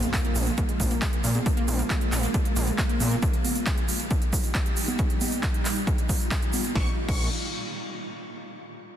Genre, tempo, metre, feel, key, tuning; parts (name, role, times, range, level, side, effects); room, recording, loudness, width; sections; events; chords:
uplifting trance; 136 BPM; 4/4; straight; Bb dorian; A4 = 441 Hz
shimmering ambient pad; sustained chords; 0.0-7.0 s; Bb2 to G4; -33 LUFS; left 1 dB; chorus, built-in reverb, sidechain pumping
wide unison pluck; arpeggios; 0.0-3.2 s; Ab3 to Bb3; -34 LUFS; right 2 dB; sidechain pumping, tape echo
gritty driven synth bass; bass; 0.0-3.2, 6.8-7.3 s; Bb1 to Bb2; -26 LUFS; equal; tube saturation, sidechain pumping
big-room dance drum kit; drums; 0.0-7.2 s; congas, crash cymbal, handclaps, hi-hat, snare drum; -31 LUFS; right 2 dB; overdrive
egg shaker; percussion; 0.0-6.7 s; -36 LUFS; right 3 dB
impact; sound effects; 0.0-1.5 s; -36 LUFS; equal
electronic kick drum; drums; 0.1-7.2 s; -26 LUFS; equal; overdrive
big supersaw lead; melody; 6.8-7.2 s; Db6; -41 LUFS; equal; sidechain pumping, tape echo
little or no reverb; dense, heavily limited modern master; -23 LUFS; side -10 dB against mid
0.0-6.8 A section; 6.8-8.5 B section
impact 0.0-1.5
0.0 Bbm7; 3.2 Eb; 6.8 Bbm7